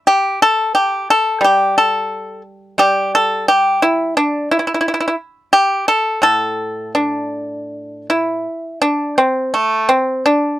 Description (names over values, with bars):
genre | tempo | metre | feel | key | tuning
chinese traditional, Chinese solo plucked strings | 77-89 BPM | 4/4 | rubato | unclear | A4 = 439 Hz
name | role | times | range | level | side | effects
pipa | solo | 0.1-10.6 s | A2 to A4 | -14 LUFS | equal | none
room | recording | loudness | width
little or no reverb | dry, close 1970s-style studio recording | -14 LUFS | side -14 dB against mid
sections
0.0-8.5 A section; 8.5-10.6 B section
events
none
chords
none